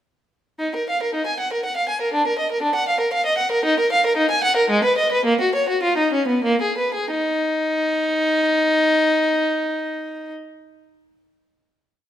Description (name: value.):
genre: classical, baroque-style suite movement for unaccompanied violin.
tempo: 86-122 BPM.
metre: 3/4.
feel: rubato.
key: Eb minor.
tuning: A4 = 440 Hz.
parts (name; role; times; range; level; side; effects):
rich violin; solo; 0.6-10.3 s; Ab3 to Ab5; -18 LUFS; equal; none.
room: moderate recital hall reverb, RT60 1.6 s.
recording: none.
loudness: -18 LUFS.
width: side -11 dB against mid.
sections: 0.6-7.1 A section; 7.1-11.0 final chord.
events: slowing down 2.9-7.1.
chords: none.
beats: | 0.60 1.14 1.65 | 2.15 2.64 3.13 | 3.65 4.18 4.71 | 5.26 5.83 6.44 | 7.11 7.77 8.41 | 9.06 9.71.